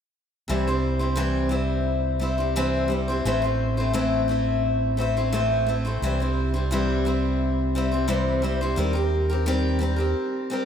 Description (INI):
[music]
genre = rock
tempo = 87 BPM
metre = 4/4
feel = straight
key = C mixolydian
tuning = A4 = 442 Hz
[part]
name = picked steel-string acoustic guitar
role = accompaniment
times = 0.5-10.7 s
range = A2 to C5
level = -23 LUFS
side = left 1 dB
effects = none
[part]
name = fingered electric bass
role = bass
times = 0.5-10.1 s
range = A1 to Eb2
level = -25 LUFS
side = right 1 dB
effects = none
[sound]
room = moderate plate reverb, RT60 3.8 s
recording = dreamy mix soaked in reverb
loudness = -21 LUFS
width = side -8 dB against mid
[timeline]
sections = 0.5-10.7 A section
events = break 10.2-10.7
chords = 0.5 C; 3.3 Am; 6.0 C; 8.8 Eb6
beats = | 0.50 1.19 1.89 2.58 | 3.27 3.96 4.65 5.34 | 6.03 6.72 7.41 8.10 | 8.79 9.47 10.16